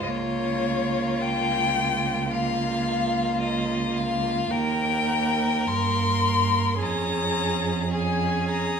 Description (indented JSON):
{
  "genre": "classical, slow romantic movement for string quartet",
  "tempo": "50-57 BPM",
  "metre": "4/4",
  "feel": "rubato",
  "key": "unclear",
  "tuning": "A4 = 439 Hz",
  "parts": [
    { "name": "rich violin", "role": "melody", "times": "0.0-8.8 s", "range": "Db5 to C6", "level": "-26 LUFS", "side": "left 6 dB", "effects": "none" },
    { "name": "rich violin", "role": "second line", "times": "0.0-8.8 s", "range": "F4 to Bb4", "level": "-30 LUFS", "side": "left 1 dB", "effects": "none" },
    { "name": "rich viola", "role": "accompaniment", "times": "0.0-8.8 s", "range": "Bb3 to Db4", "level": "-29 LUFS", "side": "right 3 dB", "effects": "none" },
    { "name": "rich cello", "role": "bass", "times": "0.0-8.8 s", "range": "Db2 to G2", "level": "-28 LUFS", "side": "right 5 dB", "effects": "none" }
  ],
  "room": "wet recital hall reverb, RT60 1.3 s",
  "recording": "minimal, uncompressed stereo recording",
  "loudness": "-22 LUFS",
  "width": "side -6 dB against mid",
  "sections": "0.0-8.8 A section",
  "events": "none",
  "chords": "0.1 Bbm/Db; 4.5 Eb; 6.8 Db/F",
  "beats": "| 0.09 1.24 2.31 3.42 | 4.52 5.68 6.80 7.92"
}